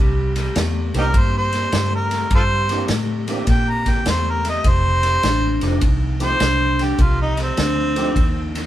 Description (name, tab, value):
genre	electric blues shuffle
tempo	102 BPM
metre	4/4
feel	swing 66% on 8ths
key	unclear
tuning	A4 = 439 Hz
part	electric guitar through a small old amp	riff	0.0-8.7 s	F2 to Bb3	-25 LUFS	left 2 dB	none
part	vintage muted fingered electric bass	bass	0.0-8.7 s	F1 to Bb2	-21 LUFS	equal	none
part	vintage drum kit	drums	0.4-8.6 s	kick drum, ride cymbal, snare drum	-21 LUFS	equal	none
part	tonewheel organ	accompaniment	0.9-8.1 s	E3 to G4	-28 LUFS	right 3 dB	slow rotary speaker, overdrive, chorus vibrato
part	mellow harmonica	melody	1.0-8.5 s	C4 to Bb5	-21 LUFS	right 1 dB	overdrive
room	light reverb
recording	band playing live in one room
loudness	-16 LUFS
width	side -13 dB against mid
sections	0.0-8.7 A section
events	harmonica solo 0.0-8.7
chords	0.0 C7; 4.7 F7